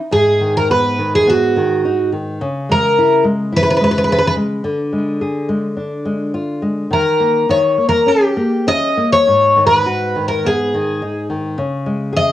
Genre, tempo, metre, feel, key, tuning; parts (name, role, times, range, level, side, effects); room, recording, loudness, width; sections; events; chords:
fado-style ballad; 106 BPM; 4/4; rubato; G# minor; A4 = 440 Hz
picked twelve-string acoustic guitar; melody; 0.1-12.3 s; F#4 to D#5; -13 LUFS; equal
nylon-string guitar; accompaniment; 0.1-12.3 s; G#2 to G#4; -19 LUFS; left 1 dB; cassette tape
moderate studio reverb, RT60 0.6 s; home recording on cassette; -13 LUFS; side -13 dB against mid
0.1-12.3 A section
0.1 G#m7; 2.4 C#m; 4.6 Ddim; 6.9 D#7; 9.3 G#m7; 11.6 C#5